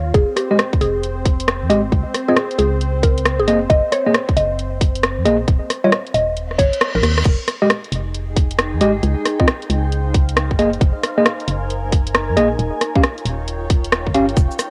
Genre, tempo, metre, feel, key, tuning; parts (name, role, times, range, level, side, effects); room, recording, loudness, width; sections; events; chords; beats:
UK garage, two-step garage; 135 BPM; 4/4; swing 64% on 16ths; F minor; A4 = 438 Hz
warm analog pad; sustained chords; 0.0-7.3, 14.6-14.7 s; C4 to F5; -30 LUFS; equal; chorus, sidechain pumping, cassette tape
organ-like FM bass; bass; 0.0-14.5 s; Eb1 to Gb2; -24 LUFS; equal
mallet-like synth pluck; melody; 0.1-7.1 s; G4 to Eb5; -22 LUFS; equal; chorus, phaser, cassette tape, analog delay
electronic kick drum; drums; 0.1-14.5 s; -18 LUFS; equal; cassette tape
garage drum kit; drums; 0.1-14.7 s; cabasa, crash cymbal, hi-hat, rim click; -22 LUFS; equal; cassette tape
mellow tine electric piano; stabs; 0.5-14.2 s; G3 to F5; -20 LUFS; equal; cassette tape, analog delay
reverse cymbal; sound effects; 6.6-7.3 s; -30 LUFS; equal
granular cloud pad; texture; 8.1-14.7 s; Eb4 to Ab5; -29 LUFS; equal; built-in reverb, sidechain pumping, cassette tape
light reverb, digital ambience; home recording on cassette; -18 LUFS; mono
0.0-7.3 A section; 7.3-14.7 A section
reverse cymbal 6.6-7.3; band accent 6.8; drum fill 7.0
0.1 Fm; 1.9 Dbmaj7(no3); 3.5 Gb69; 5.5 N.C.; 7.3 Fm9; 9.0 Dbmaj9; 10.6 Gb69; 12.6 Eb9
| 0.14 0.59 1.03 1.48 | 1.92 2.37 2.81 3.25 | 3.70 4.14 4.59 5.03 | 5.48 5.92 6.37 6.81 | 7.25 7.70 8.14 8.59 | 9.03 9.48 9.92 10.37 | 10.81 11.26 11.70 12.14 | 12.59 13.03 13.48 13.92 | 14.37